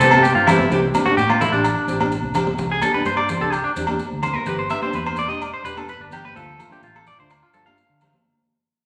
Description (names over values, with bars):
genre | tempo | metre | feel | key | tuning
highlife guitar band | 127 BPM | 4/4 | straight | C major | A4 = 440 Hz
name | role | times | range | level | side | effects
nylon-string guitar | accompaniment | 0.0-8.2 s | E3 to G4 | -27 LUFS | equal | none
clean electric guitar | arpeggios | 0.0-8.1 s | D4 to F5 | -23 LUFS | equal | none
fingered electric bass | bass | 0.0-8.1 s | E1 to D3 | -30 LUFS | equal | none
maracas | percussion | 0.0-8.2 s | none | -41 LUFS | equal | none
agogo bells | percussion | 0.1-8.1 s | none | -27 LUFS | equal | none
congas | percussion | 0.1-8.2 s | none | -28 LUFS | equal | none
room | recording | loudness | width
wet large studio reverb, RT60 1.2 s | none | -20 LUFS | mono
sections
0.7-8.3 A section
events
fade-out 0.7-8.3; clean electric guitar solo 0.7-8.3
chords
0.0 C6; 0.7 Csus2; 4.5 G; 6.4 Dm